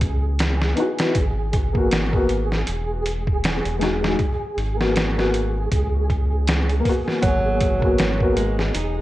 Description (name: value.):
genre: trip hop.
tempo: 79 BPM.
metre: 4/4.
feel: swing 56% on 16ths.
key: G# minor.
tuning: A4 = 440 Hz.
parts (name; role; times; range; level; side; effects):
round analog bass; bass; 0.0-9.0 s; E1 to C#2; -23 LUFS; equal; none.
trip hop sampler-style drum kit; drums; 0.0-9.0 s; hi-hat, kick drum, snare drum; -23 LUFS; equal; none.
flickering grainy texture; texture; 0.0-9.0 s; G#4; -30 LUFS; right 2 dB; built-in reverb.
felt-muted upright piano; accompaniment; 0.8-8.6 s; G#3 to F#4; -24 LUFS; left 2 dB; tremolo, tape echo.
flamenco guitar; arpeggios; 7.2-9.0 s; F#3 to D#4; -23 LUFS; right 2 dB; vintage 12-bit sampler grit, ping-pong delay.
room: light reverb.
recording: worn, warbling old tape, cassette tape, warbly pitch drift.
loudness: -18 LUFS.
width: side -16 dB against mid.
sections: 0.0-9.0 A section.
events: none.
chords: 0.0 C#m11; 1.2 G#m7; 2.7 Emaj7; 4.2 G#m7; 5.7 C#7sus4; 7.2 G#m7.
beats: 0.39 | 1.15 1.91 2.67 3.43 | 4.19 4.95 5.71 6.47 | 7.23 7.99 8.75.